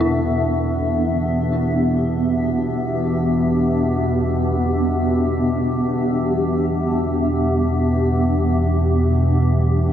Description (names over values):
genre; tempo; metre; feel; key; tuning
dark ambient drone; free time; none; none; E minor; A4 = 440 Hz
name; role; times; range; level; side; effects
granular cloud pad; sustained chords; 0.0-9.9 s; B3 to E5; -20 LUFS; equal; built-in reverb
dark detuned synth bell; arpeggios; 0.0-9.9 s; D4 to E4; -29 LUFS; equal; chorus, diffuse ambient delay
analog drone; drone; 0.0-9.9 s; E2 to B2; -19 LUFS; equal; chorus
room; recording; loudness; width
wet cathedral reverb, RT60 7.2 s; in a vast, echoing space; -17 LUFS; side -10 dB against mid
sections
0.0-9.9 A section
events
none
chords
0.0 E5